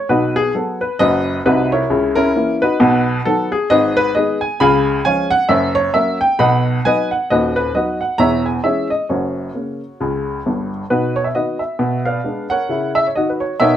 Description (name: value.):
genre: jazz, stride piano.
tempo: 133 BPM.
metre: 4/4.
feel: swing 58% on 8ths.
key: B major from 3.7 s.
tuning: A4 = 440 Hz.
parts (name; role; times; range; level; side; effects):
warm upright piano; solo; 0.0-13.8 s; D#1 to B5; -14 LUFS; equal; none.
room: moderate small room reverb, RT60 0.6 s.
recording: heard from further back in the room.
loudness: -14 LUFS.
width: side -10 dB against mid.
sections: 0.0-10.9 A section; 10.9-13.8 B section.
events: none.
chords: 0.1 B; 1.9 A#dim/C#; 2.8 B; 3.7 G#m; 4.6 C#7; 5.5 F#; 6.4 B; 7.3 B/D#; 8.2 C#m/E; 9.1 F#; 10.9 B; 11.8 Bdim7; 12.7 F#7/C#.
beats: | 0.10 0.56 1.00 1.46 | 1.91 2.35 2.81 3.25 | 3.70 4.15 4.60 5.05 | 5.50 5.95 6.40 6.85 | 7.30 7.75 8.20 8.65 | 9.10 9.55 10.00 10.45 | 10.90 11.36 11.81 12.26 | 12.71 13.16 13.61.